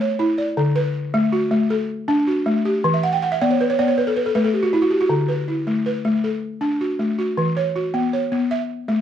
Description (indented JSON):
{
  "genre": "west african traditional",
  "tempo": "106 BPM (dotted quarters)",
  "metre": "12/8",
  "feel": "straight",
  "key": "D major",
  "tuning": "A4 = 437 Hz",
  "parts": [
    { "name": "balafon", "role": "solo", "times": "0.0-9.0 s", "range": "D3 to G5", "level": "-18 LUFS", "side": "equal", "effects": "none" }
  ],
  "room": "little or no reverb",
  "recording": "dry, close 1970s-style studio recording",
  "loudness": "-18 LUFS",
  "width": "side -10 dB against mid",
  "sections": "0.0-5.1 A section; 5.1-9.0 B section",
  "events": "balafon fill 2.9-5.1",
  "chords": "0.0 A; 0.6 D; 2.8 Em; 4.0 A5; 5.1 D; 7.4 E5; 8.5 A",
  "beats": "0.01 | 0.57 1.14 1.71 2.27 | 2.84 3.41 3.97 4.54 | 5.11 5.67 6.24 6.81 | 7.38 7.94 8.51"
}